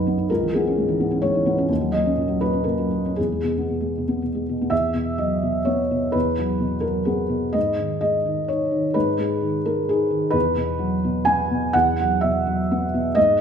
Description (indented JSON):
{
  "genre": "neoclassical minimalist piano",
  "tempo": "128 BPM",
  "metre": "3/4",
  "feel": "rubato",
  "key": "unclear",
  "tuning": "A4 = 439 Hz",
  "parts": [
    { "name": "felt-muted upright piano", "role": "solo", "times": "0.0-13.4 s", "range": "B1 to G#5", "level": "-19 LUFS", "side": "equal", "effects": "none" }
  ],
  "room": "moderate recital hall reverb, RT60 1.5 s",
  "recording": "minimal, uncompressed stereo recording",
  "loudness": "-19 LUFS",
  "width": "side -7 dB against mid",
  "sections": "0.0-4.7 A section; 4.7-13.4 B section",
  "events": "none",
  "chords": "0.3 C#m7; 1.7 D#m7; 3.2 E; 4.7 Eadd9; 7.6 G#m; 10.3 Eadd9",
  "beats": "| 0.29 0.76 1.23 | 1.70 2.17 2.66 | 3.17 3.69 4.20 | 4.71 5.20 5.67 | 6.15 6.62 7.08 | 7.55 8.03 8.48 | 8.95 9.41 9.88 | 10.35 10.81 11.27 | 11.74 12.21 12.69 | 13.16"
}